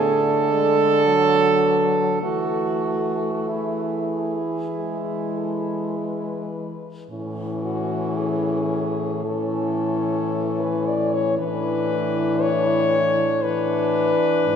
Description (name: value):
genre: classical, lyrical piece for horn quartet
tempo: 47-60 BPM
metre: 4/4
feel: rubato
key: A major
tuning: A4 = 440 Hz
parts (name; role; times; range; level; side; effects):
- clear French horn; melody; 0.0-14.6 s; F#4 to D5; -26 LUFS; left 4 dB; none
- clear French horn; second line; 0.0-14.6 s; C#4 to A4; -24 LUFS; right 4 dB; none
- clear French horn; accompaniment; 0.0-14.6 s; E3 to A3; -27 LUFS; left 3 dB; none
- mellow French horn; bass; 0.0-14.6 s; G#2 to E3; -27 LUFS; right 1 dB; none
room: wet church reverb, RT60 3.7 s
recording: recorded in a church or concert hall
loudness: -19 LUFS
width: side -7 dB against mid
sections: 0.0-7.1 A section; 7.1-14.6 B section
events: none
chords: 0.0 D; 2.3 A5/E; 4.8 E; 7.1 A; 11.4 E7(no3)/A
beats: 1.06 | 2.25 3.51 4.77 5.96 | 7.11 8.17 9.25 10.34 | 11.40 12.43 13.44 14.45